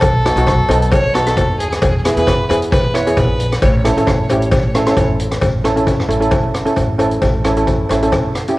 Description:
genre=calypso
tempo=133 BPM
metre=4/4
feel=straight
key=unclear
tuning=A4 = 439 Hz
part: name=dark fiddle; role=melody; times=0.0-5.0 s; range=G#4 to C#5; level=-20 LUFS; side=equal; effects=none
part: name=upright bass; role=bass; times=0.0-8.5 s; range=F#1 to E2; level=-20 LUFS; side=equal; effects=none
part: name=street-band drum kit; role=drums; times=0.0-8.6 s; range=hi-hat, kick drum, rim click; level=-18 LUFS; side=equal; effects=cassette tape
part: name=cowbell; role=percussion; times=0.0-8.2 s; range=none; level=-22 LUFS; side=left 2 dB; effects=none
part: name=steel pan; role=accompaniment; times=0.3-8.6 s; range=B3 to B4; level=-17 LUFS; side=right 1 dB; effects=cassette tape
room=light reverb, small room ambience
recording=home recording on cassette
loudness=-12 LUFS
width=side -19 dB against mid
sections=0.0-5.4 A section; 5.4-8.6 B section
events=none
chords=0.0 B7; 1.8 E; 3.6 A

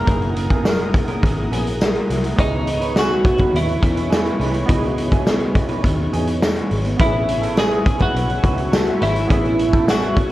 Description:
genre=indie pop, bedroom pop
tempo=104 BPM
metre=4/4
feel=straight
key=unclear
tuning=A4 = 441 Hz
part: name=twelve-string electric guitar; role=melody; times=0.0-10.3 s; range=D#4 to A#4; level=-22 LUFS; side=equal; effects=lush chorus, plate reverb
part: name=nylon-string guitar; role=accompaniment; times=0.0-10.3 s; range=C#3 to C#5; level=-27 LUFS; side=left 2 dB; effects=wide subtle chorus, warbly pitch drift, plate reverb
part: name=warm analog keys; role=accompaniment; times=0.0-10.3 s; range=E3 to D#5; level=-28 LUFS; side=right 2 dB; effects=chorus, plate reverb
part: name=warm analog pad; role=sustained chords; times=0.0-10.3 s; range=G#4 to D#6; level=-31 LUFS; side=right 1 dB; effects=chorus, plate reverb
part: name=electric guitar through a small old amp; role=second line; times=0.1-10.0 s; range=A#3 to C#5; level=-30 LUFS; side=right 5 dB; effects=wide subtle chorus, tape echo, plate reverb
part: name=vintage muted fingered electric bass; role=bass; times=0.1-10.3 s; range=F#1 to E2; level=-24 LUFS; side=equal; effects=none
part: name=raw garage drum kit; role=drums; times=0.1-10.3 s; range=hi-hat, kick drum, snare drum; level=-19 LUFS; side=equal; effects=none
part: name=tambourine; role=percussion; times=0.7-10.0 s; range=none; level=-37 LUFS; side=left 4 dB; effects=none
room=moderate studio reverb, RT60 0.6 s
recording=worn, warbling old tape, cassette tape, warbly pitch drift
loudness=-16 LUFS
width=side -15 dB against mid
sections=0.0-7.0 A section; 7.0-10.3 A section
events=none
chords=0.0 F#9; 2.4 C#m9; 7.0 Amaj9

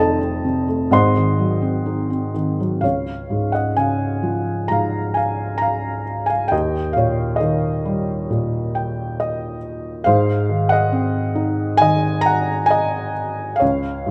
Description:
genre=classical, lyrical solo piano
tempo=67 BPM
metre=4/4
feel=uneven beats, rubato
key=Db major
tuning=A4 = 439 Hz
part: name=felt-muted upright piano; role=solo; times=0.0-14.1 s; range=F1 to C6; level=-20 LUFS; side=equal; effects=none
room=moderate recital hall reverb, RT60 1.6 s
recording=close, detailed microphones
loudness=-20 LUFS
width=mono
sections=0.0-2.8 A section; 2.8-14.1 B section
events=felt piano fill 8.3-10.1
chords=0.0 F7; 0.9 Ab7; 2.8 Db; 6.5 Eb7; 10.1 Ab7

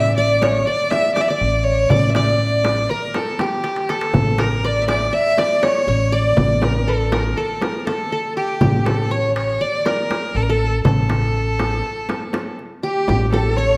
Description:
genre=Turkish makam ensemble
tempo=242 BPM (eighths)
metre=9/8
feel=straight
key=A makam hicaz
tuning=A4 = 440 Hz
part: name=rich violin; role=melody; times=0.0-13.8 s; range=G4 to E5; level=-23 LUFS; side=equal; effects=none
part: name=qanun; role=second line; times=0.0-13.8 s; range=G4 to E5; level=-26 LUFS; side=equal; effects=none
part: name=upright bass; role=bass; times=0.0-13.8 s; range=A1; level=-23 LUFS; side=equal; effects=none
part: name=darbuka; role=percussion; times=0.2-12.9 s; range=none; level=-27 LUFS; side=equal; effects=none
part: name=frame drum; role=percussion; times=0.4-13.4 s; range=none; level=-28 LUFS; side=equal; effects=none
room=wet recital hall reverb, RT60 1.5 s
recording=none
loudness=-19 LUFS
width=mono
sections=0.0-13.1 A section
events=drum fill 3.6-4.1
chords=none

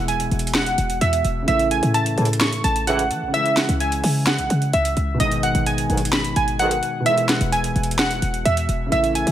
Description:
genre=hip hop, trap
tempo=129 BPM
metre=4/4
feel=half-time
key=unclear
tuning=A4 = 442 Hz
part: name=glassy digital keys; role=melody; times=0.0-9.3 s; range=D#5 to C#6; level=-22 LUFS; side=right 2 dB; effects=chorus, low-pass filter, ping-pong delay
part: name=dark baby grand piano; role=accompaniment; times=0.0-9.3 s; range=B2 to E4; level=-25 LUFS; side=equal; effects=low-pass filter
part: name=short 808-style bass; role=bass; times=0.0-9.3 s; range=D#1 to E3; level=-23 LUFS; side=equal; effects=none
part: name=trap drum kit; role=drums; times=0.1-9.3 s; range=hi-hat, snare drum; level=-24 LUFS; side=equal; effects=none
part: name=dark brass ensemble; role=stabs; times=2.2-3.0, 5.9-6.7 s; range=B1 to E3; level=-28 LUFS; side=right 2 dB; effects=ping-pong delay
room=light reverb, studio reverb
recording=none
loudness=-18 LUFS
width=side -11 dB against mid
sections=0.0-9.3 A section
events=none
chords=0.0 E; 1.5 A; 3.3 C#m; 5.2 G#m; 7.1 E

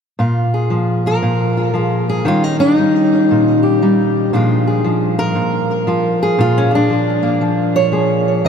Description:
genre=acoustic country blues, solo or duo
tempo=116 BPM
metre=4/4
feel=swing 63% on 8ths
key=Bb mixolydian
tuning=A4 = 440 Hz
part: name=fingerpicked steel-string acoustic guitar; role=solo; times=0.2-8.5 s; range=Bb2 to Db5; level=-13 LUFS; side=equal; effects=ping-pong delay
room=wet huge ambient reverb, RT60 7.7 s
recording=dreamy mix soaked in reverb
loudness=-13 LUFS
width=side -7 dB against mid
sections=0.2-8.5 A section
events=none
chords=0.2 Bb5; 2.3 Eb7; 4.3 Bb7

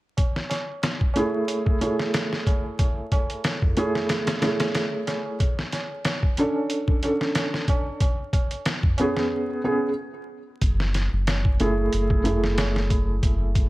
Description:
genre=trip hop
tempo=92 BPM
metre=4/4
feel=swing 55% on 16ths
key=unclear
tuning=A4 = 445 Hz
part: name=trip hop sampler-style drum kit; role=drums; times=0.2-13.7 s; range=hi-hat, kick drum, snare drum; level=-24 LUFS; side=equal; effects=small room ambience
part: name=tabla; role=percussion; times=0.2-12.7 s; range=none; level=-33 LUFS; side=right 1 dB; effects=none
part: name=felt-muted upright piano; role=accompaniment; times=1.2-13.7 s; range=A3 to A4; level=-25 LUFS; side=right 1 dB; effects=tremolo, low-pass filter, tape echo
part: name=soft dub sub bass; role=bass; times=10.6-13.7 s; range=F#1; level=-24 LUFS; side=equal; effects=tube saturation
room=small room ambience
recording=vinyl crackle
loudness=-21 LUFS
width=side -18 dB against mid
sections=0.2-10.6 A section; 10.6-13.7 B section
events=break 9.3-10.6; filter sweep on felt piano 10.6-13.7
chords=0.2 Eadd11/A; 5.4 Aadd11/C#; 8.0 G#madd11/B; 10.6 F#m9

